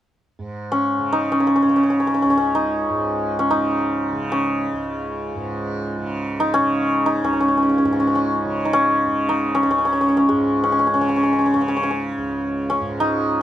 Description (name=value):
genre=indian classical, Hindustani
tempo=free time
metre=none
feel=none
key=unclear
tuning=A4 = 440 Hz
part: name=tanpura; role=drone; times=0.4-13.4 s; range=Db2 to Db3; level=-28 LUFS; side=right 3 dB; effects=none
part: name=santur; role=melody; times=0.7-13.4 s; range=Ab3 to Eb4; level=-18 LUFS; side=equal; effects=none
room=light reverb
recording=close, detailed microphones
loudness=-17 LUFS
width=side -11 dB against mid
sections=0.4-13.4 A section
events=none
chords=none